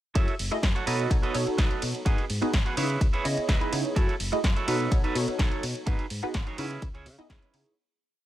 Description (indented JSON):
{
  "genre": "filtered disco house",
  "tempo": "126 BPM",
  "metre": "4/4",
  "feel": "straight",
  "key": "unclear",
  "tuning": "A4 = 440 Hz",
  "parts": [
    { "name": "funky polysynth comp", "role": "accompaniment", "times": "0.1-7.7 s", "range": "A3 to D#5", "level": "-30 LUFS", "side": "right 1 dB", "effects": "chorus, phaser, sidechain pumping" },
    { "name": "clean electric guitar", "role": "riff", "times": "0.1-7.5 s", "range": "C#4 to F#5", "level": "-33 LUFS", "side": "right 4 dB", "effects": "sidechain pumping" },
    { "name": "fingered electric bass", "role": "bass", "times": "0.2-7.6 s", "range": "F#1 to C#3", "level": "-32 LUFS", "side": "equal", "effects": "sidechain pumping" },
    { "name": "electronic kick drum", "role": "drums", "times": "0.2-7.4 s", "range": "none", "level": "-25 LUFS", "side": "equal", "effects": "none" },
    { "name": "punchy analog drum machine", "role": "drums", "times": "0.2-7.8 s", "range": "hi-hat, ride cymbal, snare drum", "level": "-34 LUFS", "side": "equal", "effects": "none" }
  ],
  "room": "little or no reverb",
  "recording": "none",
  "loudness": "-24 LUFS",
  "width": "side -13 dB against mid",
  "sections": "0.2-7.8 drop",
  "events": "drop 0.2-7.8; fade-out 5.2-7.8",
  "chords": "0.2 F#m7; 0.9 B7; 2.1 G#m7; 2.8 C#m7; 4.0 F#m7; 4.7 B7; 5.9 G#m7; 6.6 C#m7",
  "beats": "| 0.15 0.63 1.11 1.58 | 2.06 2.54 3.01 3.49 | 3.96 4.44 4.92 5.39 | 5.87 6.34 6.82 7.30"
}